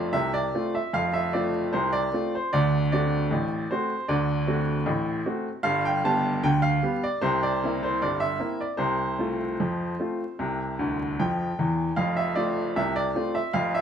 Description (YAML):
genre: ragtime piano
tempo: 76 BPM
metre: 2/4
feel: straight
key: F major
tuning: A4 = 440 Hz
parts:
  - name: bright upright piano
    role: solo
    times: 0.0-13.8 s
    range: F1 to A5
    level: -23 LUFS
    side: equal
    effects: none
room: wet large studio reverb, RT60 1.1 s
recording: band playing live in one room, vinyl crackle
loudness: -23 LUFS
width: side -8 dB against mid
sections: 0.0-13.8 A section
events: upright piano fill 10.8-12.0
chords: 0.0 F; 2.5 D7; 5.6 G; 7.2 C7; 8.8 F/C; 10.4 C; 12.0 F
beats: 0.14 | 0.93 1.72 | 2.51 3.29 | 4.08 4.87 | 5.65 6.43 | 7.21 8.00 | 8.79 9.59 | 10.39 11.19 | 11.98 12.77 | 13.56